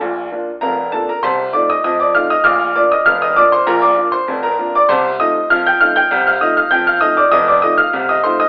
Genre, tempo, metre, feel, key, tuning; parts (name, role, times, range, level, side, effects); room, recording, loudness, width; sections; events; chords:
ragtime piano; 98 BPM; 2/4; straight; Bb major; A4 = 440 Hz
clear upright piano; solo; 0.0-8.5 s; F1 to G6; -14 LUFS; equal
wet large studio reverb, RT60 1.2 s; band playing live in one room, telephone sound; -14 LUFS; mono
0.0-8.5 A section
0.0 Bb; 1.2 F7/C; 2.4 Bb; 4.9 F7/C; 7.3 F7